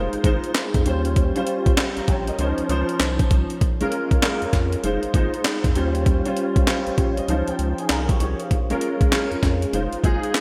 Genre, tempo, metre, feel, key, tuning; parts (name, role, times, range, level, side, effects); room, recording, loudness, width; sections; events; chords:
R&B, new jack swing; 98 BPM; 4/4; swing 63% on 16ths; Bb dorian; A4 = 438 Hz
warm grand piano; accompaniment; 0.0-10.4 s; F3 to Db6; -26 LUFS; equal; ensemble chorus
round analog bass; bass; 0.0-10.2 s; F1 to F2; -28 LUFS; equal
breakbeat sampler-style drum kit; drums; 0.1-10.4 s; handclaps, hi-hat, kick drum, snare drum; -23 LUFS; equal; gated reverb
moderate plate reverb, RT60 2.7 s; bright 1980s-style digital production; -21 LUFS; mono
0.0-10.4 A section
grand piano fill 6.7-8.5
0.0 Fm7; 0.9 Eb13; 2.4 Dbmaj9; 3.6 Bbm7; 4.8 Fm7; 5.8 Eb13; 7.3 Dbmaj9; 8.5 Bbm7; 9.7 Fm7